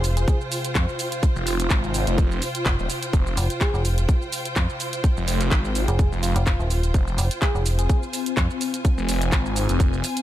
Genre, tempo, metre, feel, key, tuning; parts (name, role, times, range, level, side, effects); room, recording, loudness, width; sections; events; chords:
bass house; 126 BPM; 4/4; swing 54% on 16ths; F minor; A4 = 437 Hz
sweeping resonant pad; sustained chords; 0.0-10.2 s; C3 to F4; -33 LUFS; left 2 dB; chorus, sidechain pumping
metallic FM bass; bass; 0.0-8.5 s; Eb1 to F2; -22 LUFS; equal; overdrive, sidechain pumping
garage drum kit; drums; 0.0-10.2 s; handclaps, hi-hat, shaker; -28 LUFS; right 1 dB
rich symphonic string section; texture; 0.0-10.2 s; F4 to C6; -31 LUFS; equal; sidechain pumping
soft struck synth lead; melody; 0.2-0.4, 3.6-8.0 s; F4 to Ab4; -33 LUFS; left 1 dB; chorus, vintage 12-bit sampler grit, tape echo
electronic kick drum; drums; 0.3-9.9 s; -20 LUFS; equal
phased detuned saw bass; bass; 1.4-10.0 s; Eb1 to Ab1; -24 LUFS; equal; phaser, overdrive, sidechain pumping
digital ambience; -20 LUFS; side -13 dB against mid
0.0-10.2 A section
0.0 Fm